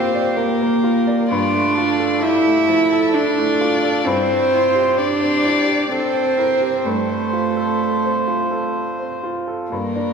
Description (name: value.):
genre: neoclassical piano and strings.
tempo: 64 BPM.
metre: 3/4.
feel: rubato.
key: unclear.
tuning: A4 = 439 Hz.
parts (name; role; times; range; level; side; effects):
dark violin; melody; 0.0-10.1 s; A4 to E5; -21 LUFS; left 1 dB; none.
rich cello; second line; 0.0-10.1 s; A3 to E4; -19 LUFS; right 2 dB; none.
bright upright piano; accompaniment; 0.0-10.1 s; G2 to D5; -24 LUFS; equal; none.
rich viola; accompaniment; 0.0-9.2 s; E4 to C5; -24 LUFS; right 1 dB; none.
room: wet scoring stage reverb, RT60 2.0 s.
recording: heard from further back in the room.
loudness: -16 LUFS.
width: side -6 dB against mid.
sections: 0.0-10.1 A section.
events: none.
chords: 0.0 Gm7; 1.3 Dm/G; 4.1 C/G; 6.8 F/G.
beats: 0.36 | 1.30 2.22 3.14 | 4.06 4.98 5.91 | 6.84 7.79 8.75 | 9.71.